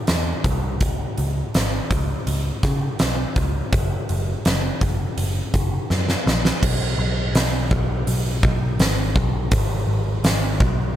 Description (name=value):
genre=rock, shoegaze and dream pop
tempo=83 BPM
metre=4/4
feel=straight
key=unclear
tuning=A4 = 440 Hz
part: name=vintage muted picked electric bass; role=bass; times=0.1-11.0 s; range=F#1 to C#3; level=-23 LUFS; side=equal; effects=none
part: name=huge arena drum kit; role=drums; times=0.1-10.8 s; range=crash cymbal, hi-hat, kick drum, snare drum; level=-21 LUFS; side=equal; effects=none
room=little or no reverb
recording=none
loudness=-19 LUFS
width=side -12 dB against mid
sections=0.0-6.6 A section; 6.6-11.0 B section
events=drum fill 5.9-6.6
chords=none